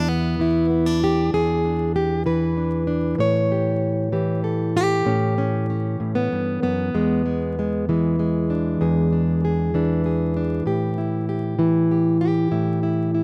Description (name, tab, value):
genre	acoustic country blues, solo or duo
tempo	64 BPM (dotted quarters)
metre	12/8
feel	straight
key	E mixolydian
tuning	A4 = 440 Hz
part	fingerpicked plugged-in steel-string acoustic guitar	solo	0.0-13.2 s	E2 to C#5	-21 LUFS	equal	none
room	little or no reverb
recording	recorded outdoors, with no room sound, vinyl crackle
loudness	-21 LUFS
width	mono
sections	0.0-13.2 A section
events	none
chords	0.0 E7; 3.2 A7; 6.9 E7; 10.7 A7(no3)